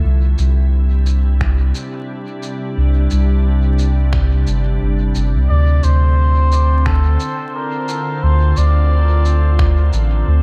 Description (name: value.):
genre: ambient dub.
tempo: 88 BPM.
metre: 4/4.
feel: swing 55% on 16ths.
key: D minor.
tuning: A4 = 441 Hz.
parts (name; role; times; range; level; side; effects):
soft additive organ-like pad; sustained chords; 0.0-10.4 s; C3 to F4; -26 LUFS; equal; ensemble chorus, built-in reverb.
soft dub sub bass; bass; 0.1-10.4 s; G1 to D2; -15 LUFS; equal; none.
electronic shaker and finger snaps; drums; 0.4-10.1 s; none; -34 LUFS; equal; studio reverb, dub echo.
electronic kick drum; drums; 1.4-9.7 s; none; -22 LUFS; equal; studio reverb.
trumpet with cup mute; melody; 5.5-9.9 s; A4 to D5; -24 LUFS; equal; dub echo.
room: digital ambience.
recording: vinyl crackle.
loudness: -15 LUFS.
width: mono.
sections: 0.0-5.5 A section; 5.5-10.4 B section.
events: none.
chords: 0.0 C; 5.5 Dm7.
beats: | 0.04 0.73 1.41 2.09 | 2.77 3.45 4.14 4.82 | 5.50 6.18 6.86 7.54 | 8.23 8.91 9.59 10.27.